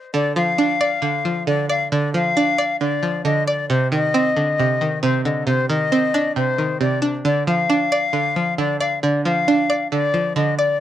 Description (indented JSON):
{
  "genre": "hip hop",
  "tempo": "135 BPM",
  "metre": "4/4",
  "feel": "half-time",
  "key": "D phrygian",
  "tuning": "A4 = 437 Hz",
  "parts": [
    { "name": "breathy silver concert flute", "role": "melody", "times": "0.1-10.8 s", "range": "C5 to F5", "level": "-20 LUFS", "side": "left 4 dB", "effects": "cassette tape" },
    { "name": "string-like resonator pluck", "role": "accompaniment", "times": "0.1-10.8 s", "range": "C3 to D5", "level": "-19 LUFS", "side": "right 3 dB", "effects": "chorus, cassette tape" }
  ],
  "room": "moderate small room reverb, RT60 0.5 s",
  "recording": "home recording on cassette",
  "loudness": "-17 LUFS",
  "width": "side -11 dB against mid",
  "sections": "0.1-10.8 A section",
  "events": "none",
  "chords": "0.1 Dm; 3.7 Cmadd9; 7.3 Dm"
}